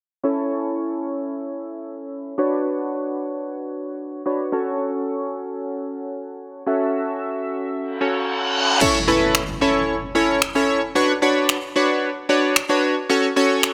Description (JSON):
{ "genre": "dance-pop", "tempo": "112 BPM", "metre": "4/4", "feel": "straight", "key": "unclear", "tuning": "A4 = 442 Hz", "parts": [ { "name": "chorused retro synth keys", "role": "accompaniment", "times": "0.2-13.7 s", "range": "C#4 to E5", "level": "-22 LUFS", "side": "equal", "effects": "none" }, { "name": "reverse cymbal and impact", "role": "sound effects", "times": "8.0-11.0 s", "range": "none", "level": "-26 LUFS", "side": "equal", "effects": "none" }, { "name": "deep house drum kit", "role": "drums", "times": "8.8-13.7 s", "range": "crash cymbal, finger snaps", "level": "-23 LUFS", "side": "equal", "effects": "none" } ], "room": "moderate lush hall reverb, RT60 1.9 s, digital ambience", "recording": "low-pass filter", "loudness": "-21 LUFS", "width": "mono", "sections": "0.2-8.8 A section; 8.8-13.7 B section", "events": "filter sweep 0.2-8.8; reverse cymbal 8.0-8.8; impact 8.8-11.0", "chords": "0.2 A; 2.4 Bmadd9; 4.5 F#m; 8.8 A; 11.0 Bmadd9; 13.1 F#m", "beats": "| 0.24 0.78 1.31 1.85 | 2.38 2.92 3.45 3.99 | 4.53 5.06 5.60 6.13 | 6.67 7.20 7.74 8.28 | 8.81 9.35 9.88 10.42 | 10.95 11.49 12.03 12.56 | 13.10 13.63" }